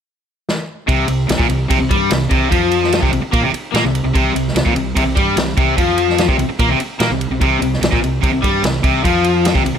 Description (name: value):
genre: classic rock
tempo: 147 BPM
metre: 4/4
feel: straight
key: unclear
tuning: A4 = 441 Hz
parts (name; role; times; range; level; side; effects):
- vintage drum kit; drums; 0.5-9.8 s; kick drum, ride cymbal, snare drum; -18 LUFS; equal; none
- crunchy overdriven guitar; riff; 0.9-9.8 s; Bb2 to Bb3; -19 LUFS; left 11 dB; none
- distorted electric guitar; riff; 0.9-9.8 s; Bb2 to Bb3; -19 LUFS; right 11 dB; overdrive
- fuzz fingered electric bass; bass; 0.9-9.8 s; Bb1 to Bb2; -21 LUFS; right 1 dB; overdrive
room: light reverb, small room ambience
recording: none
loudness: -13 LUFS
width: side -8 dB against mid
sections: 0.9-9.8 A section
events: drum fill 0.5-0.9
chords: 0.0 N.C.; 0.9 C5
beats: 0.07 0.47 | 0.88 1.29 1.70 2.11 | 2.51 2.92 3.33 3.74 | 4.15 4.55 4.96 5.37 | 5.78 6.19 6.60 7.00 | 7.41 7.82 8.23 8.63 | 9.04 9.45